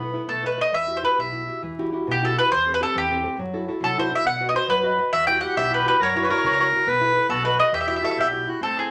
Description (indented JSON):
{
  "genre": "italian folk, Italian serenade",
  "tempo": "138 BPM (dotted quarters)",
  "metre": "6/8",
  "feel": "rubato",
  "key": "E harmonic minor",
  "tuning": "A4 = 440 Hz",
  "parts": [
    { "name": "accordion", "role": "second line", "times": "0.0-0.7, 5.1-8.9 s", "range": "A3 to B4", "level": "-25 LUFS", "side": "equal", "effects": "none" },
    { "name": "nylon-string guitar", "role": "accompaniment", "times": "0.0-8.9 s", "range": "B2 to D#5", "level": "-31 LUFS", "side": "equal", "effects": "none" },
    { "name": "upright bass", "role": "bass", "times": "0.0-8.9 s", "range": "A1 to C3", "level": "-38 LUFS", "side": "equal", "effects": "none" },
    { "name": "mandolin", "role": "melody", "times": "0.3-8.9 s", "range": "G4 to G5", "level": "-23 LUFS", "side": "equal", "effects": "none" }
  ],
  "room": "wet studio reverb, RT60 0.6 s",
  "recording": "vinyl crackle",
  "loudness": "-22 LUFS",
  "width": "mono",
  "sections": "0.0-1.6 A section; 1.6-8.6 A section",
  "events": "none",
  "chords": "0.3 B7; 0.7 Emadd9; 2.5 Am7/E; 3.4 F#m7b5; 4.3 B; 5.1 Emadd9; 6.0 F#7; 6.9 B7sus4; 7.3 B7; 7.7 Emadd9"
}